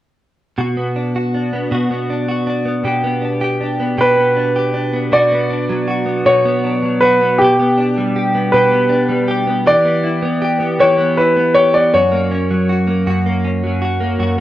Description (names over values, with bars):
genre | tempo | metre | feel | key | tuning
pop | 53 BPM (dotted quarters) | 6/8 | straight | B harmonic minor | A4 = 440 Hz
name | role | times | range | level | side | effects
direct-recorded clean electric guitar | accompaniment | 0.6-14.4 s | F#2 to G4 | -16 LUFS | equal | double-tracked left and right
clear concert grand piano | melody | 4.0-12.7 s | G4 to D5 | -14 LUFS | equal | none
room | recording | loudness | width
moderate recital hall reverb, RT60 1.3 s, small room ambience | worn, warbling old tape, cassette tape, warbly pitch drift | -13 LUFS | side -14 dB against mid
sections
0.6-5.1 A section; 5.1-14.4 B section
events
none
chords
0.6 Bm; 2.9 G/B; 5.1 Bm; 7.4 G/B; 9.7 Em; 11.9 F#